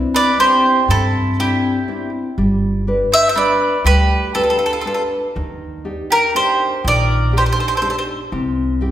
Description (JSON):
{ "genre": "italian folk, Italian serenade", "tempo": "121 BPM", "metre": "3/4", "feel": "straight", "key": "unclear", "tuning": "A4 = 439 Hz", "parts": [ { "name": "nylon-string guitar", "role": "accompaniment", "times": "0.0-8.9 s", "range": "C3 to B4", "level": "-20 LUFS", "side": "left 1 dB", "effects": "none" }, { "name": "upright bass", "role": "bass", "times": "0.0-8.9 s", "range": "G1 to G2", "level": "-20 LUFS", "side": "equal", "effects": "none" }, { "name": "bowl-back mandolin", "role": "second line", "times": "0.1-8.0 s", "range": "D4 to C5", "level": "-22 LUFS", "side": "right 2 dB", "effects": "none" }, { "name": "bowl-back mandolin", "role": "melody", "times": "0.2-8.0 s", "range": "G4 to E5", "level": "-16 LUFS", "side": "right 1 dB", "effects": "none" } ], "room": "wet recital hall reverb, RT60 1.7 s", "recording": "recorded in a church or concert hall, faint mains hum", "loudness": "-14 LUFS", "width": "side -12 dB against mid", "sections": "0.0-8.9 A section", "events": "none", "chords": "0.0 Cadd9; 2.4 G; 5.4 Ebmaj7; 8.3 C", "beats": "0.39 | 0.88 1.38 1.88 | 2.37 2.87 3.36 | 3.85 4.35 4.85 | 5.35 5.85 6.35 | 6.84 7.33 7.83 | 8.32 8.81" }